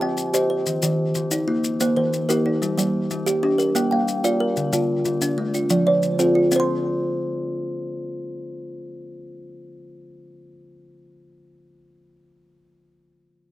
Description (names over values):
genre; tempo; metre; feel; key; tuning
southern african traditional, mbira-style interlocking cycle; 123 BPM (dotted quarters); 12/8; straight; unclear; A4 = 438 Hz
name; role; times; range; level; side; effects
kalimba; arpeggios; 0.0-11.3 s; D3-29c to C6; -23 LUFS; left 2 dB; none
kalimba; arpeggios; 0.0-11.3 s; D3-29c to C6; -23 LUFS; right 2 dB; none
maracas; percussion; 0.2-6.7 s; none; -29 LUFS; left 4 dB; none
room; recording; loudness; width
little or no reverb; recorded outdoors, with no room sound; -19 LUFS; side -15 dB against mid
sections
0.0-6.5 A section; 6.5-10.4 B section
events
none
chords
0.0 Cm; 0.7 Eb; 2.6 Gm; 3.6 Bb; 4.6 Dm; 5.5 F; 6.5 N.C.